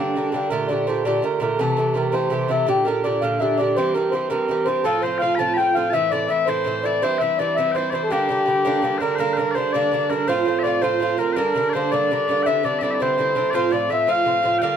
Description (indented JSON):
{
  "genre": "celtic folk",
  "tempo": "110 BPM (dotted quarters)",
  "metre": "6/8",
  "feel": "straight",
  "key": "G dorian",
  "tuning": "A4 = 436 Hz",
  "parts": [
    { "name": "mellow accordion", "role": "melody", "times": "0.0-14.8 s", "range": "G4 to A5", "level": "-21 LUFS", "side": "left 1 dB", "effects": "plate reverb" },
    { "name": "Irish bouzouki", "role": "accompaniment", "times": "0.0-14.8 s", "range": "G2 to G4", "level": "-23 LUFS", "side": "right 4 dB", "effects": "none" },
    { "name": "mellow small bagpipes", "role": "second line", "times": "4.8-14.8 s", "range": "G4 to B5", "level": "-26 LUFS", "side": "left 6 dB", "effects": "none" }
  ],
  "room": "moderate studio reverb, RT60 0.5 s",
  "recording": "dark, warm production",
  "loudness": "-18 LUFS",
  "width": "side -8 dB against mid",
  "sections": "0.5-9.2 A section; 9.2-14.8 B section",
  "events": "none",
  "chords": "0.0 Gm; 0.5 Gmadd9; 1.6 Am7; 2.7 Gm; 3.8 C; 4.9 F; 5.9 Am; 7.0 C; 8.1 Gm; 10.3 F; 11.4 Gm; 12.5 Cadd9; 13.5 F"
}